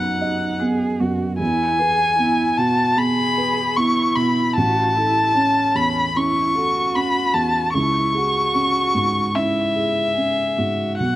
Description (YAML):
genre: neoclassical piano and strings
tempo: 76 BPM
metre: 4/4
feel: rubato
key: unclear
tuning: A4 = 439 Hz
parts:
  - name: muted violin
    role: melody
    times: 0.0-11.2 s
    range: E5 to C#6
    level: -19 LUFS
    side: left 2 dB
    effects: slapback echo
  - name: muted cello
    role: second line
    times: 0.0-11.2 s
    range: C#4 to G#4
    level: -26 LUFS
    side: right 4 dB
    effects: slapback echo
  - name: felt-muted upright piano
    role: accompaniment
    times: 0.0-11.2 s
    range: A1 to D#5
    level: -22 LUFS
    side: right 2 dB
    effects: none
room: little or no reverb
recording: recorded outdoors, with no room sound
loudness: -17 LUFS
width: side -14 dB against mid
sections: 0.0-11.2 A section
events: none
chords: 0.0 B; 1.4 E; 4.6 A; 7.8 C#m